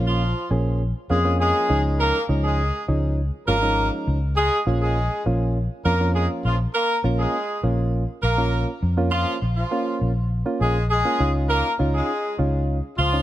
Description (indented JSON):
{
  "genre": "dance-pop",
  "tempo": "101 BPM",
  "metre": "4/4",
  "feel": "straight",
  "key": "Bb minor",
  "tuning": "A4 = 440 Hz",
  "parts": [
    { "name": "soft electric-piano-like synth keys", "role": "accompaniment", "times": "0.0-13.2 s", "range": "F3 to Ab4", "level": "-26 LUFS", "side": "right 2 dB", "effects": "chorus" },
    { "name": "vintage muted fingered electric bass", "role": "bass", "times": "0.0-13.2 s", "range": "Ab1 to F2", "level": "-22 LUFS", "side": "equal", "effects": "none" },
    { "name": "warm horn section", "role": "melody", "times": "0.1-13.2 s", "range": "F3 to Bb4", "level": "-23 LUFS", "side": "equal", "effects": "digital delay" }
  ],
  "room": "little or no reverb",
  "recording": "none",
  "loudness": "-20 LUFS",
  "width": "side -13 dB against mid",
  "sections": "0.0-6.7 A section; 6.7-13.2 B section",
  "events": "none",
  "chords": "0.0 Bbm; 1.7 Dbadd9; 4.4 Bbm; 11.2 Dbadd9"
}